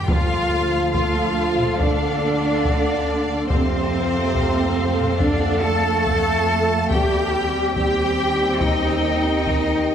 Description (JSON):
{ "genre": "cinematic, epic orchestral film score", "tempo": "70 BPM", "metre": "4/4", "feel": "straight", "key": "D phrygian", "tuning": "A4 = 440 Hz", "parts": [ { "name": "clear symphonic violin section", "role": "second line", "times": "0.0-9.9 s", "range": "C5 to A5", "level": "-28 LUFS", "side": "left 3 dB", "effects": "none" }, { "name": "warm trombone section", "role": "sustained chords", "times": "0.0-9.9 s", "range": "C3 to A3", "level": "-26 LUFS", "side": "right 3 dB", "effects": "none" }, { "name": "warm symphonic cello section", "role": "bass", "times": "0.0-9.9 s", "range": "C4 to A4", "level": "-24 LUFS", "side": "right 1 dB", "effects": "none" }, { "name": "rich symphonic violin section", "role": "melody", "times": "0.1-9.9 s", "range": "F5 to G5", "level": "-29 LUFS", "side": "left 4 dB", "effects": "none" }, { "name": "warm symphonic viola section", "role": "accompaniment", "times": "0.1-9.9 s", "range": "A3 to A4", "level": "-27 LUFS", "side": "right 1 dB", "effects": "none" }, { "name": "dark French horn section", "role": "sustained chords", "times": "0.1-9.9 s", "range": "C4 to A4", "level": "-27 LUFS", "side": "left 2 dB", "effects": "none" }, { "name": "warm symphonic double bass section", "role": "bass", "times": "0.1-9.9 s", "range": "D2 to F2", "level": "-26 LUFS", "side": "right 2 dB", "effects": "none" }, { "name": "solo taiko drums", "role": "drums", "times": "0.1-9.9 s", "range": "none", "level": "-25 LUFS", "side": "left 1 dB", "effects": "none" } ], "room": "wet concert hall reverb, RT60 2.5 s", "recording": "none", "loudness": "-17 LUFS", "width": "side -8 dB against mid", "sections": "0.0-9.9 A section", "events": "none", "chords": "0.1 Dm; 3.5 F; 6.9 Cm/Eb" }